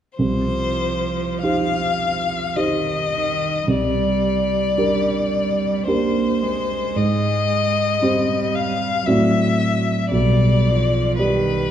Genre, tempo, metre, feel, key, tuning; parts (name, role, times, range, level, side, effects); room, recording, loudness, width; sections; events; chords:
classical, slow romantic movement for piano trio; 46-59 BPM; 3/4; rubato; C minor; A4 = 439 Hz
rich violin; melody; 0.2-11.7 s; B4 to F5; -22 LUFS; left 5 dB
rich cello; second line; 0.2-11.7 s; Eb3 to Bb3; -25 LUFS; right 7 dB
dark concert grand piano; accompaniment; 0.2-11.7 s; B1 to D5; -20 LUFS; right 1 dB
wet recital hall reverb, RT60 1.5 s; dark, warm production; -17 LUFS; side -10 dB against mid
0.2-11.7 A section
0.2 Cm; 3.7 Gm/C; 7.0 Abmaj7; 9.1 D7/A; 10.1 G/B